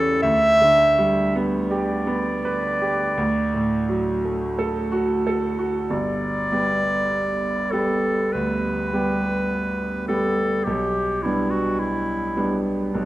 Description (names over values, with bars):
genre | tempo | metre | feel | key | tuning
classical, romantic duo for clarinet and grand piano | 38-54 BPM | 4/4 | rubato | G major | A4 = 440 Hz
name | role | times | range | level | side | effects
bright clarinet | melody | 0.0-13.1 s | D4 to E5 | -22 LUFS | equal | none
bright grand piano | accompaniment | 0.0-13.1 s | G1 to B4 | -23 LUFS | right 1 dB | none
room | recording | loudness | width
wet recital hall reverb, RT60 1.4 s | none | -20 LUFS | side -16 dB against mid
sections
0.0-5.9 A section; 5.9-13.1 B section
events
none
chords
0.2 G/D; 3.2 D; 5.9 G; 10.6 G/B